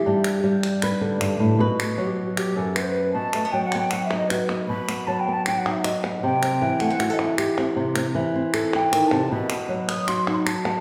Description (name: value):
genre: flamenco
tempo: 155 BPM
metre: 4/4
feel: straight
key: B phrygian dominant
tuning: A4 = 441 Hz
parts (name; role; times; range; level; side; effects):
- flamenco guitar; melody; 0.0-10.8 s; F#2 to B4; -25 LUFS; equal; none
- palmas hand claps; percussion; 0.2-10.8 s; none; -32 LUFS; equal; none
- breathy mellow jazz flute; second line; 2.0-10.8 s; F#4 to D#6; -28 LUFS; equal; none
room: wet recital hall reverb, RT60 1.7 s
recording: recorded in a church or concert hall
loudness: -23 LUFS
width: mono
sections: 0.0-3.1 A section; 3.1-10.8 B section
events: flute solo 3.1-10.8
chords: 0.1 G; 1.6 B5; 3.1 B; 6.2 C; 9.3 B